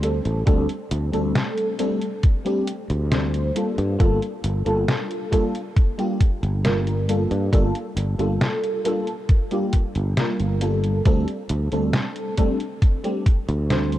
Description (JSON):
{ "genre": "vaporwave", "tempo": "68 BPM", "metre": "4/4", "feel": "straight", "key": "G minor", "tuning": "A4 = 440 Hz", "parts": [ { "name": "FM electric piano with soft pad layer", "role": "accompaniment", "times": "0.0-14.0 s", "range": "G3 to C5", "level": "-24 LUFS", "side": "equal", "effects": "phaser, ensemble chorus, cassette tape, analog delay" }, { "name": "sustaining fretless electric bass", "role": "bass", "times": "0.0-14.0 s", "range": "G1 to G2", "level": "-22 LUFS", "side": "equal", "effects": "none" }, { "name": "detuned 8-bit digital drum machine", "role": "drums", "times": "0.0-14.0 s", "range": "hi-hat, snare drum", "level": "-26 LUFS", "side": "equal", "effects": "none" }, { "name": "electronic kick drum", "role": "drums", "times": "0.5-13.4 s", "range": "none", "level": "-18 LUFS", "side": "equal", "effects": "none" } ], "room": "digital ambience", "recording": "dark, warm production", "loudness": "-20 LUFS", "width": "side -14 dB against mid", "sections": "0.0-14.0 A section", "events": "none", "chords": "0.0 D7sus4; 3.6 Gm7; 11.1 D7sus4" }